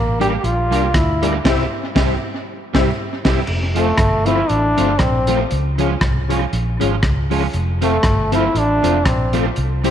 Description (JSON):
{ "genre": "ska", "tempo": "118 BPM", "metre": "4/4", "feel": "swing 56% on 8ths", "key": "F major", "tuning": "A4 = 439 Hz", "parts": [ { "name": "bright trombone", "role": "melody", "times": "0.0-9.5 s", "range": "A3 to G4", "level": "-19 LUFS", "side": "equal", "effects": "none" }, { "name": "vintage muted fingered electric bass", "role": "bass", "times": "0.0-9.9 s", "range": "F1 to D2", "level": "-20 LUFS", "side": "equal", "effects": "tube saturation" }, { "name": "electric guitar at the edge of break-up", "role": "accompaniment", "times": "0.2-9.9 s", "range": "F3 to G4", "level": "-24 LUFS", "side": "right 10 dB", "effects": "analog chorus" }, { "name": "mellow tonewheel organ", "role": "stabs", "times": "0.2-9.9 s", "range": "C4 to E5", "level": "-24 LUFS", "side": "left 10 dB", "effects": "chorus vibrato, slow rotary speaker" }, { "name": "crunchy breakbeat drum kit", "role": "drums", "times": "0.2-9.9 s", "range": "crash cymbal, hi-hat, kick drum, rim click, snare drum", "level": "-21 LUFS", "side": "equal", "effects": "tape echo" } ], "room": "moderate echo chamber reverb, RT60 2.6 s", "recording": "1960s-style stereo with parts hard left and right", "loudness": "-15 LUFS", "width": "side -9 dB against mid", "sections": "0.0-3.5 A section; 3.5-9.9 A section", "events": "band accent 1.4-3.5", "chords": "0.0 Gm; 1.4 C; 3.5 F; 5.5 Db; 7.5 F", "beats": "0.43 0.94 | 1.45 1.96 2.46 2.97 | 3.48 3.98 4.49 5.00 | 5.50 6.01 6.52 7.03 | 7.53 8.04 8.55 9.06 | 9.56" }